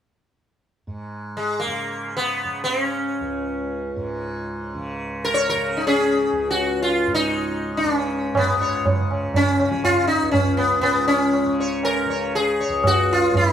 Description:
indian classical, Hindustani; free time; Db raga khamaj; A4 = 440 Hz
tanpura; drone; 0.9-13.5 s; Db2 to Db3; -29 LUFS; right 2 dB
sitar; melody; 1.4-13.5 s; Ab3 to Db5; -20 LUFS; left 1 dB; plate reverb
tabla; percussion; 8.3-13.5 s; -23 LUFS; right 3 dB
wet studio reverb, RT60 0.6 s; -19 LUFS; side -9 dB against mid
0.9-8.4 A section; 8.4-13.5 B section

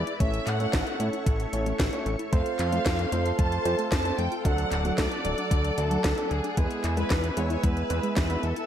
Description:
italo disco; 113 BPM; 4/4; straight; A major; A4 = 439 Hz
rich studio violin section; melody; 0.0-8.7 s; G#4 to A5; -32 LUFS; equal; ping-pong delay
string machine, full ensemble; sustained chords; 0.0-8.7 s; G#4 to E6; -34 LUFS; left 1 dB; ensemble chorus
fat analog bass; bass; 0.0-8.5 s; D1 to A2; -29 LUFS; equal; tube saturation
warbly dusty pluck; arpeggios; 0.1-8.6 s; F#3 to A4; -36 LUFS; left 2 dB; chorus, cassette tape, ping-pong delay
house drum kit; drums; 0.1-8.7 s; handclaps, hi-hat, snare drum; -32 LUFS; equal; gated reverb
dark baby grand piano; stabs; 0.2-8.5 s; F#3 to C#5; -32 LUFS; right 3 dB
electronic kick drum; drums; 0.2-8.3 s; -26 LUFS; equal
light reverb; -24 LUFS; side -10 dB against mid
0.0-8.7 A section
0.2 A; 2.3 F; 4.5 D; 6.6 E

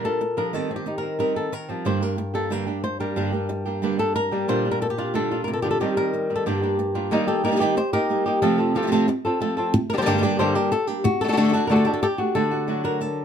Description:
flamenco; 183 BPM; 4/4; straight; G minor; A4 = 441 Hz
flamenco guitar; melody; 0.0-13.2 s; G2 to D5; -22 LUFS; left 2 dB
flamenco guitar; stabs; 0.0-13.0 s; F2 to G4; -26 LUFS; right 5 dB
light reverb; close, detailed microphones; -20 LUFS; side -8 dB against mid
0.0-7.1 A section; 7.1-12.4 B section
0.0 Bb6; 0.5 Eb6; 1.9 Gm; 4.5 Bb6; 5.8 Eb6; 6.5 Gm; 7.1 Eb; 8.4 F; 9.7 Gm; 11.0 D

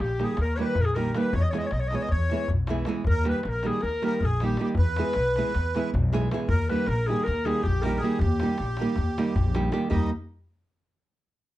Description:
balkan folk, Balkan wedding band; 314 BPM (eighths); 9/8; straight; Eb phrygian dominant; A4 = 440 Hz
mellow clarinet; melody; 0.0-10.1 s; Eb4 to Eb5; -30 LUFS; left 3 dB
accordion; second line; 0.0-10.1 s; G4 to Eb5; -34 LUFS; right 4 dB; light tremolo tuning
upright bass; bass; 0.0-10.1 s; Bb1 to E2; -27 LUFS; equal
darbuka; percussion; 0.0-10.1 s; -30 LUFS; left 2 dB
nylon-string guitar; accompaniment; 0.2-10.1 s; Eb3 to G#4; -28 LUFS; right 3 dB
light reverb; dark, warm production; -23 LUFS; side -15 dB against mid
0.0-9.9 A section; 9.9-11.6 B section
0.0 Eb; 1.3 E; 3.1 Eb; 4.8 E; 6.5 Eb

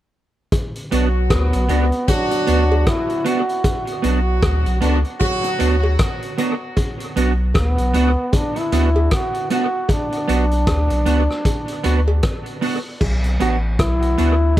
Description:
roots reggae; 77 BPM; 4/4; swing 59% on 16ths; B minor; A4 = 443 Hz
vintage drum kit; drums; 0.5-14.6 s; crash cymbal, hi-hat, kick drum, rim click; -22 LUFS; equal; dub echo
cowbell; percussion; 0.5-14.6 s; -27 LUFS; equal
clear horn section; second line; 0.9-5.9 s; D3 to F#4; -25 LUFS; right 1 dB; dub echo
electric guitar at the edge of break-up; accompaniment; 0.9-14.3 s; B3 to F#4; -24 LUFS; right 4 dB; ensemble chorus, dub echo
warm sub bass; bass; 0.9-14.6 s; A1 to D2; -17 LUFS; equal
clear trombone; melody; 1.3-14.6 s; B3 to F#4; -23 LUFS; equal; dub echo
light reverb; echo-heavy mix; -16 LUFS; side -14 dB against mid
0.5-13.0 A section; 13.0-14.6 B section
0.5 Bm

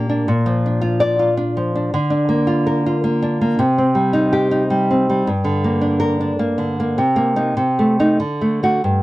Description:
romantic piece for solo classical guitar; 92-110 BPM; 3/4; rubato; A4 = 439 Hz
nylon-string guitar; solo; 0.0-9.0 s; G2 to D5; -15 LUFS; equal
light reverb; worn, warbling old tape, cassette tape, warbly pitch drift; -15 LUFS; side -17 dB against mid
0.0-9.0 A section
0.3 Bb; 1.9 Bb/D; 3.6 Cm; 5.3 Gm; 7.0 Cm7; 7.6 Adim/C; 8.2 D

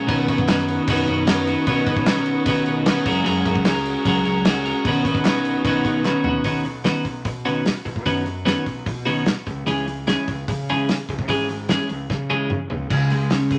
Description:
indie rock; 149 BPM; 4/4; straight; B major; A4 = 439 Hz
sweeping resonant pad; sustained chords; 0.0-6.4 s; A#4 to C#6; -34 LUFS; equal; chorus
twelve-string electric guitar; riff; 0.0-13.6 s; B2 to A#4; -23 LUFS; equal; spring reverb
fuzz fingered electric bass; bass; 0.0-13.6 s; F#1 to C#3; -33 LUFS; equal; overdrive
loose indie drum kit; drums; 0.1-13.6 s; crash cymbal, hi-hat, kick drum, snare drum, toms; -26 LUFS; equal
group handclap; percussion; 0.5-6.1 s; -38 LUFS; equal
light reverb; -21 LUFS; mono
0.0-6.4 A section; 6.4-12.9 B section
drum fill 6.0-6.4, 12.1-12.9
0.1 Badd9; 3.1 F#add9; 4.8 Badd9; 9.5 C#m; 12.9 C#5

